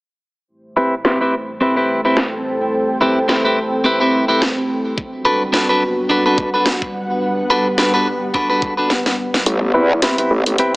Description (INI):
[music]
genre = glitch hop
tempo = 107 BPM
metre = 4/4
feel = swing 57% on 16ths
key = A dorian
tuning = A4 = 440 Hz
[part]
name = dark analog pad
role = sustained chords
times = 0.5-10.8 s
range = G3 to C5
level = -24 LUFS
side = equal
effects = chorus, sidechain pumping
[part]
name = ethereal airy pad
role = texture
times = 2.0-10.8 s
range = G3 to G5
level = -23 LUFS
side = equal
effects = ensemble chorus, built-in reverb, sidechain pumping
[part]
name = clean electric guitar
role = stabs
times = 0.8-10.7 s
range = C4 to B4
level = -16 LUFS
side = equal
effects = sidechain pumping, low-pass filter, digital delay
[part]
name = drum and bass drum kit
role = drums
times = 1.0-10.7 s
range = hi-hat, snare drum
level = -19 LUFS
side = equal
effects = low-pass filter on snare, low-pass filter on hats
[part]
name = electronic kick drum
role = drums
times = 5.0-8.8 s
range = none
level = -24 LUFS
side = equal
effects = none
[part]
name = growl bass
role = bass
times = 9.5-10.6 s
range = A1 to E2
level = -15 LUFS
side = equal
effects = chorus, high-pass filter
[sound]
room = moderate plate reverb, RT60 2.7 s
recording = small speaker sound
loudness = -14 LUFS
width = side -24 dB against mid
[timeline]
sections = 0.5-9.5 A section; 9.5-10.8 B section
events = filter sweep on drum 0.5-9.5; filter sweep on clean electric guitar 0.5-9.5, 9.5-10.8; drum fill 8.9-9.5; build-up 9.5-10.8; filter sweep 9.5-10.8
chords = 0.5 Am7; 5.0 Gmaj7; 9.5 Am7